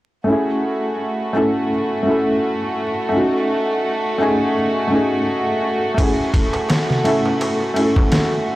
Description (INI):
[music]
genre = trip hop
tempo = 84 BPM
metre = 4/4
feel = swing 56% on 16ths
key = F# dorian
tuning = A4 = 440 Hz
[part]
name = felt-muted upright piano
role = accompaniment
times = 0.2-8.6 s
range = A3 to A4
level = -19 LUFS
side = equal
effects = harmonic tremolo, tape echo
[part]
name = warm studio violin section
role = sustained chords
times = 0.3-8.6 s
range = A3 to F#4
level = -22 LUFS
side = right 1 dB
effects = none
[part]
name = trip hop sampler-style drum kit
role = drums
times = 6.0-8.3 s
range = kick drum, ride cymbal, snare drum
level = -19 LUFS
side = equal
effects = overdrive
[part]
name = darbuka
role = percussion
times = 6.0-8.4 s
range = none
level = -27 LUFS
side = right 1 dB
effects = none
[sound]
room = small room reverb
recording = dry, gritty hardware recording, vinyl crackle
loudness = -16 LUFS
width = side -16 dB against mid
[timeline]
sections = 0.3-8.6 A section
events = none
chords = 0.3 F#m7; 3.1 F#m69/A; 6.0 F#m7